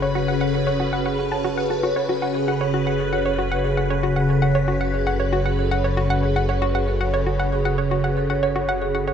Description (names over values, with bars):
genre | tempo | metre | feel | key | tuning
ambient, sequencer-driven space music | 116 BPM | 4/4 | straight | F# minor | A4 = 440 Hz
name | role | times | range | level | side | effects
phased string machine | sustained chords | 0.0-9.1 s | C#3 to B4 | -23 LUFS | left 1 dB | ensemble chorus, phaser
vibraphone with medium mallets | arpeggios | 0.0-9.1 s | F#4 to C#5 | -25 LUFS | right 4 dB | auto-pan, analog delay
hollow square pluck | riff | 0.0-9.1 s | F#4 to A5 | -26 LUFS | left 1 dB | chorus, analog delay
round analog bass | bass | 0.0-9.1 s | F#1 | -27 LUFS | equal | none
room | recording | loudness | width
wet spring reverb, RT60 2.7 s | echo-heavy mix | -19 LUFS | side -8 dB against mid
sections
0.0-9.1 A section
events
none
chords
0.0 F#madd9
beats
0.41 0.93 1.45 | 1.96 2.48 3.00 3.52 | 4.03 4.55 5.07 5.58 | 6.10 6.62 7.14 7.65 | 8.17 8.69